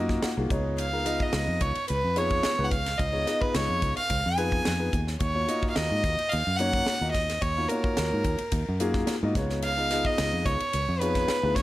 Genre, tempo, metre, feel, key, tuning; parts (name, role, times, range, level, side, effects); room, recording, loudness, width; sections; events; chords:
electric jazz fusion; 109 BPM; 4/4; straight; A4 = 441 Hz
dark grand piano; accompaniment; 0.0-11.6 s; Bb3 to Gb5; -30 LUFS; left 2 dB
fingered electric bass; bass; 0.0-11.6 s; C2 to Ab2; -30 LUFS; equal
crisp fusion drum kit; drums; 0.1-11.6 s; hi-hat, kick drum, ride cymbal, snare drum; -31 LUFS; equal
clear violin; melody; 0.8-11.6 s; Bb4 to Ab5; -28 LUFS; right 1 dB
light reverb, small room ambience; -24 LUFS; side -16 dB against mid
0.0-11.6 A section
grand piano fill 0.0-0.8
0.0 Ebmadd9; 0.5 Db9; 5.2 Ebm9; 9.4 Db9